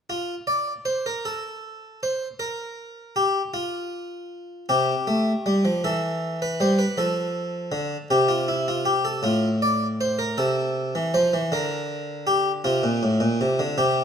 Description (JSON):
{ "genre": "classical, baroque-style two-part invention for harpsichord", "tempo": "53 BPM (dotted quarters)", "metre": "6/8", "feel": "straight", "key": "F major", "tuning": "A4 = 440 Hz", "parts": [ { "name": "harpsichord", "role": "solo", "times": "0.1-14.0 s", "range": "A2 to D5", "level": "-22 LUFS", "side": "equal", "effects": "none" } ], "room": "wet stone room reverb, RT60 1.3 s", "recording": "none", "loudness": "-22 LUFS", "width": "side -7 dB against mid", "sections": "0.1-14.0 A section", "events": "none", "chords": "0.1 N.C.; 4.7 C5; 5.8 C/E; 7.0 F; 8.1 C; 9.2 F/A; 10.4 F/C; 11.5 Bb/D; 12.6 F", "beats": "| 0.08 1.25 | 2.40 3.55 | 4.69 5.83 | 6.97 8.10 | 9.23 10.37 | 11.50 12.64 | 13.78" }